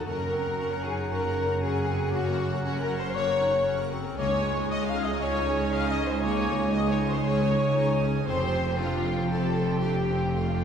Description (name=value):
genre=cinematic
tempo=117 BPM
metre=4/4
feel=straight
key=unclear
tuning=A4 = 440 Hz
part: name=warm symphonic violin section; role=melody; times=0.0-10.6 s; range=F4 to F5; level=-35 LUFS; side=left 2 dB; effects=none
part: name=bright flute section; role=second line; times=0.0-10.6 s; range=F5 to F6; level=-38 LUFS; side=left 3 dB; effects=none
part: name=bright symphonic violin section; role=second line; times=0.0-10.6 s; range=Eb5 to Gb6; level=-42 LUFS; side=left 1 dB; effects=none
part: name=clear clarinet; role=second line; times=0.0-10.6 s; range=Ab3 to F4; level=-36 LUFS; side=equal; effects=none
part: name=rich symphonic viola section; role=accompaniment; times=0.0-10.6 s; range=A3 to Db5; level=-38 LUFS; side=right 2 dB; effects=none
part: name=clear trombone section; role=sustained chords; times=0.0-10.6 s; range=A2 to Eb4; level=-35 LUFS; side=right 5 dB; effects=none
part: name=dark French horn section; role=sustained chords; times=0.0-10.6 s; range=F4 to F5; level=-30 LUFS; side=left 2 dB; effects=none
part: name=concert harp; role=arpeggios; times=0.0-10.6 s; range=Gb2 to Db5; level=-39 LUFS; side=left 5 dB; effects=none
part: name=clear trumpet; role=stabs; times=0.0-10.6 s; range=Gb5 to Ab5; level=-38 LUFS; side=right 2 dB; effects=none
part: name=dark symphonic double bass section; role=bass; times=0.0-10.6 s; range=F1 to Db2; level=-31 LUFS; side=right 1 dB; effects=none
part: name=rich symphonic cello section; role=bass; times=0.0-10.6 s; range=Db2 to Gb2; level=-32 LUFS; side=right 1 dB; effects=none
room=wet scoring stage reverb, RT60 1.8 s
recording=heard from further back in the room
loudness=-24 LUFS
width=side -7 dB against mid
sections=0.0-10.6 A section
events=none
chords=0.1 Gb; 4.2 Dbsus2; 8.3 Fadd9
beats=| 0.07 0.58 1.10 1.61 | 2.13 2.64 3.16 3.67 | 4.18 4.70 5.21 5.72 | 6.23 6.74 7.25 7.77 | 8.28 8.79 9.31 9.83 | 10.36